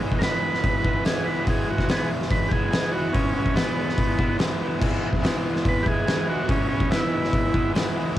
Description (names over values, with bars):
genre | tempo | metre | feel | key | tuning
garage rock duo or trio | 144 BPM | 4/4 | straight | E major | A4 = 440 Hz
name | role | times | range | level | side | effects
raw garage guitar | riff | 0.0-8.2 s | E3 to E4 | -26 LUFS | equal | overdrive, cassette tape
oversized low-tuned drum kit | drums | 0.1-8.2 s | crash cymbal, hi-hat, kick drum, snare drum | -24 LUFS | equal | none
combo organ | melody | 0.2-7.7 s | B3 to B4 | -26 LUFS | right 1 dB | cassette tape
room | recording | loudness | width
small room ambience | home recording on cassette | -21 LUFS | side -13 dB against mid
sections
0.0-8.2 A section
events
transistor combo organ solo 0.0-8.2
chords
0.0 E